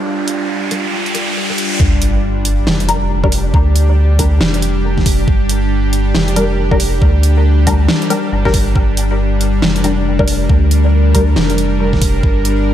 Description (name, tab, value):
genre	deep dubstep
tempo	138 BPM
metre	4/4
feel	swing 61% on 16ths, half-time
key	G minor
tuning	A4 = 439 Hz
part	bowed-like drone	sustained chords	0.0-12.7 s	G3 to Bb4	-18 LUFS	equal	built-in reverb
part	riser and sub drop	sound effects	0.0-3.5 s	none	-20 LUFS	right 1 dB	none
part	wind-like tuned noise texture	texture	0.0-1.8 s	G5	-36 LUFS	right 3 dB	none
part	dubstep drum kit	drums	0.3-12.6 s	hi-hat, snare drum	-19 LUFS	right 1 dB	overdrive
part	filtered dub chord stab	stabs	0.7-11.2 s	G3 to Bb4	-21 LUFS	left 2 dB	phaser, ensemble chorus, cassette tape, dub echo
part	soft dub sub bass	bass	1.8-12.7 s	F1 to D2	-14 LUFS	equal	tube saturation
part	electronic kick drum	drums	1.8-12.3 s	none	-14 LUFS	equal	overdrive
room	light reverb, digital ambience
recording	none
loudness	-11 LUFS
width	side -11 dB against mid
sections	0.0-1.8 A section; 1.8-12.7 B section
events	riser 0.0-1.8; drop 1.8-12.7; impact 1.8-3.5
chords	0.0 Gm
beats	| 0.06 0.49 0.93 1.36 | 1.80 2.23 2.67 3.10 | 3.54 3.97 4.41 4.84 | 5.28 5.71 6.15 6.58 | 7.02 7.45 7.88 8.32 | 8.76 9.19 9.62 10.06 | 10.49 10.93 11.36 11.80 | 12.23 12.67